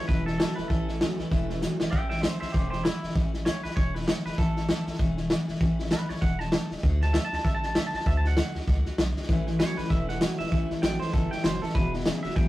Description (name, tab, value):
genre	rockabilly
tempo	196 BPM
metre	4/4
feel	swing 59% on 8ths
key	A mixolydian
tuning	A4 = 440 Hz
part	twangy electric guitar	melody	0.0-12.5 s	E4 to A5	-34 LUFS	right 2 dB	none
part	picked steel-string acoustic guitar	accompaniment	0.0-12.5 s	E2 to F#4	-32 LUFS	left 1 dB	none
part	electric guitar through a small old amp	riff	0.0-1.9, 9.3-12.5 s	E2 to F#3	-34 LUFS	right 1 dB	warbly pitch drift
part	vintage drum kit	drums	0.0-12.4 s	hi-hat, kick drum, snare drum	-27 LUFS	equal	none
part	saturated sub bass	bass	0.1-12.5 s	E1 to D2	-31 LUFS	equal	none
room	light reverb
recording	rough rehearsal-room recording, warm saturation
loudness	-24 LUFS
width	side -16 dB against mid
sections	0.0-1.9 A section; 1.9-12.5 B section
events	drum fill 1.6-1.9; clean electric guitar solo 1.9-12.5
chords	0.0 A; 6.8 D; 9.3 A; 11.7 E